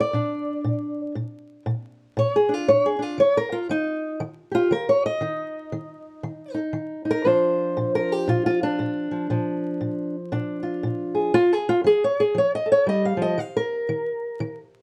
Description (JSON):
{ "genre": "acoustic country blues, solo or duo", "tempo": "118 BPM", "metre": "4/4", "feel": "swing 60% on 8ths", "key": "Bb mixolydian", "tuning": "A4 = 441 Hz", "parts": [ { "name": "fingerpicked old ladder-braced acoustic guitar", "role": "solo", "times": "0.0-14.8 s", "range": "Bb2 to F5", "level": "-23 LUFS", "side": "equal", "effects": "none" } ], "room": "light reverb", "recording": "dark, warm production, vinyl crackle", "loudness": "-23 LUFS", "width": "mono", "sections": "0.0-14.8 A section", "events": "steel-string acoustic guitar solo 0.0-14.8", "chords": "0.0 Bb; 3.2 Eb5; 7.3 Bb; 11.3 F; 13.4 N.C." }